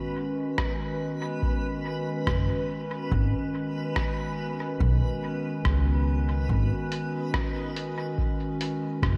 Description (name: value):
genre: ambient dub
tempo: 71 BPM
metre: 4/4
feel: straight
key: G# minor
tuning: A4 = 440 Hz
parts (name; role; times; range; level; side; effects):
- warbly tape-like pad; sustained chords; 0.0-9.2 s; D#3 to B4; -33 LUFS; equal; chorus, built-in reverb
- backwards swelling texture; texture; 0.0-9.2 s; B3 to B4; -39 LUFS; equal; built-in reverb, lush chorus
- electronic kick drum; drums; 0.6-9.2 s; none; -33 LUFS; equal; small room ambience
- lo-fi sampler-style drum kit; drums; 0.6-9.2 s; hi-hat, rim click; -37 LUFS; equal; small room ambience, dub echo
- upright bass; bass; 2.3-9.2 s; F#1 to C#2; -27 LUFS; equal; tube saturation
room: light reverb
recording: none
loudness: -28 LUFS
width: mono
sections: 0.0-9.2 A section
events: none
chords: 0.0 G#m7